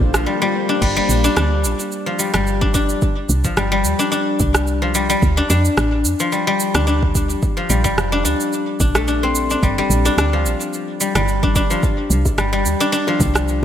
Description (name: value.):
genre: organic downtempo.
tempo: 109 BPM.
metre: 4/4.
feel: swing 54% on 16ths.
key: G minor.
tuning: A4 = 440 Hz.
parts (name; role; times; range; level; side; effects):
guzheng; arpeggios; 0.0-13.6 s; F3 to D4; -18 LUFS; left 2 dB; tape echo.
woody FM bass; bass; 0.0-13.6 s; F1 to F2; -19 LUFS; right 1 dB; none.
deep house drum kit; drums; 0.1-13.6 s; cabasa, crash cymbal, rim click; -22 LUFS; right 2 dB; none.
electronic kick drum; drums; 0.8-13.3 s; none; -20 LUFS; right 1 dB; none.
congas and bongos; percussion; 9.9-13.6 s; none; -28 LUFS; left 1 dB; none.
room: light reverb.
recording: none.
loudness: -15 LUFS.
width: side -10 dB against mid.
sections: 0.8-13.6 A section.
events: none.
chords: 0.0 Bb; 0.8 Gm7; 3.0 C5; 5.2 Dm; 7.4 Bbmaj7; 9.6 Gm7; 11.8 C5.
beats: 0.27 | 0.82 1.37 1.92 2.47 | 3.02 3.57 4.12 4.67 | 5.22 5.77 6.32 6.87 | 7.42 7.97 8.53 9.07 | 9.63 10.18 10.73 11.28 | 11.83 12.38 12.93 13.48.